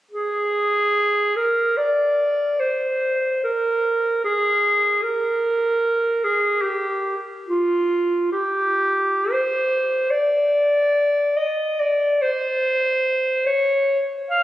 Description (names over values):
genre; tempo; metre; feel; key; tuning
classical, free, expressive piece for unaccompanied clarinet; 57-77 BPM; 3/4; rubato; unclear; A4 = 438 Hz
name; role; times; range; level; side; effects
clear clarinet; solo; 0.1-14.4 s; F4 to F5; -18 LUFS; equal; none
room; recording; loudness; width
moderate church reverb, RT60 3.1 s; recorded on a phone in the room, studio reverb; -18 LUFS; side -14 dB against mid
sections
0.1-14.4 A section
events
none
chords
none